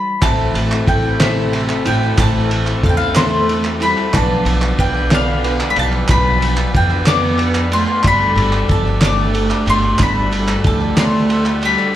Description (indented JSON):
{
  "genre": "indie folk with a building arrangement",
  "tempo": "61 BPM (dotted quarters)",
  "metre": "6/8",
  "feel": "straight",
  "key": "A minor",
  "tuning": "A4 = 440 Hz",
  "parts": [
    { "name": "mandolin", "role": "melody", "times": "0.0-12.0 s", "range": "E5 to D6", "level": "-19 LUFS", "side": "left 2 dB", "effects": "slapback echo" },
    { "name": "warm cello", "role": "second line", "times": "0.0-11.9 s", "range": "C3 to B3", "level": "-22 LUFS", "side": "right 3 dB", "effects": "slapback echo" },
    { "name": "fingerpicked steel-string acoustic guitar", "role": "accompaniment", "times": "0.0-1.2 s", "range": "none", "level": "barely audible", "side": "none", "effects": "none" },
    { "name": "picked plugged-in twelve-string acoustic guitar", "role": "accompaniment", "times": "0.2-12.0 s", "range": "A2 to B4", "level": "-24 LUFS", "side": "left 6 dB", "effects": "slapback echo" },
    { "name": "hand-pumped harmonium", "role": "sustained chords", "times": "0.2-12.0 s", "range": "A3 to F5", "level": "-28 LUFS", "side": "right 2 dB", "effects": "none" },
    { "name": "open-back banjo", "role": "arpeggios", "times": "0.2-12.0 s", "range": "B3 to F5", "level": "-28 LUFS", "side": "right 4 dB", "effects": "slapback echo, analog delay" },
    { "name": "upright bass", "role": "bass", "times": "0.2-11.7 s", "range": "G1 to F2", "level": "-19 LUFS", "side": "equal", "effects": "none" },
    { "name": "cloth-damped thuddy drum kit", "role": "drums", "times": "0.2-11.8 s", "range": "kick drum, ride cymbal, snare drum", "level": "-19 LUFS", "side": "equal", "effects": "none" },
    { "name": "group handclap", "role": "percussion", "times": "0.2-11.9 s", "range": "none", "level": "-26 LUFS", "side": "right 3 dB", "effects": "slapback echo" }
  ],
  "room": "small room ambience",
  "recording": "live gig heard through the venue's PA, club reverb",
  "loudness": "-13 LUFS",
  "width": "side -12 dB against mid",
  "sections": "0.2-12.0 A section",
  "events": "stop 0.0",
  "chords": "0.2 Am; 4.1 Bdim; 8.0 Gsus2"
}